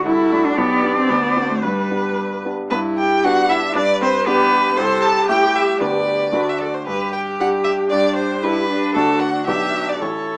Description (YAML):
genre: quick classical-period movement for piano quartet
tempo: 115 BPM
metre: 2/4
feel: straight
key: G major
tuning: A4 = 441 Hz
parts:
  - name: clear violin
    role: melody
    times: 0.0-10.4 s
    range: F#4 to A5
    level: -22 LUFS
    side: equal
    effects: none
  - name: clear grand piano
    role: accompaniment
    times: 0.0-10.4 s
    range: A1 to G4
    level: -26 LUFS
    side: equal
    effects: none
  - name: warm viola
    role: accompaniment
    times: 0.0-10.4 s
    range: B3 to D5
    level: -26 LUFS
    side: equal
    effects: none
  - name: clear cello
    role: second line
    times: 0.1-10.4 s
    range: G3 to B4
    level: -24 LUFS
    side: equal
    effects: none
room: moderate large studio reverb, RT60 0.9 s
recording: small speaker sound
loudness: -18 LUFS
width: mono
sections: 0.0-2.7 A section; 2.7-10.4 B section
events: none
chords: 0.1 D7/C; 0.6 G/B; 1.1 D7; 1.6 G; 4.8 Am7/C; 5.8 G/D; 6.3 D; 6.9 G5; 8.9 D; 9.5 G/B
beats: 0.06 | 0.57 1.09 | 1.63 2.17 | 2.71 3.23 | 3.75 4.26 | 4.77 5.28 | 5.81 6.33 | 6.87 7.39 | 7.91 8.43 | 8.95 9.47 | 10.01